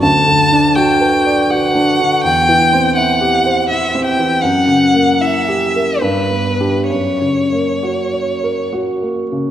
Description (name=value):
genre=classical, romantic duo for violin and grand piano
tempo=63-83 BPM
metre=3/4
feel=rubato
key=unclear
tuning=A4 = 441 Hz
part: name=rich violin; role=melody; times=0.0-8.7 s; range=B4 to A5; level=-15 LUFS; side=left 1 dB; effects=none
part: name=warm grand piano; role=accompaniment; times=0.0-9.5 s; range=D2 to D5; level=-15 LUFS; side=equal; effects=none
room=wet scoring stage reverb, RT60 2.0 s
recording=none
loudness=-12 LUFS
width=side -11 dB against mid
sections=0.0-9.5 A section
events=none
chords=0.0 Bm/D; 2.2 C/E; 4.4 F#7b9; 6.0 G; 6.9 F#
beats=| 0.03 0.76 1.50 | 2.24 2.97 3.70 | 4.44 5.21 6.02 | 6.89 7.83 8.73